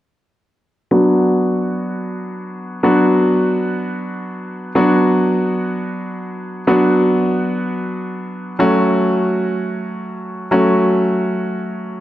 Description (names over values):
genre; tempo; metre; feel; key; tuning
pop; free time; none; none; B minor; A4 = 440 Hz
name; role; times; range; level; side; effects
clear baby grand piano; accompaniment; 0.9-12.0 s; F#3 to F#4; -15 LUFS; equal; low-pass filter
room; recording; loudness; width
moderate lush hall reverb, RT60 2.5 s; dry, gritty hardware recording; -14 LUFS; side -14 dB against mid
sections
0.9-4.8 A section; 4.8-12.0 B section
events
filter sweep on grand piano 0.9-4.8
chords
0.9 Bm; 8.6 F#m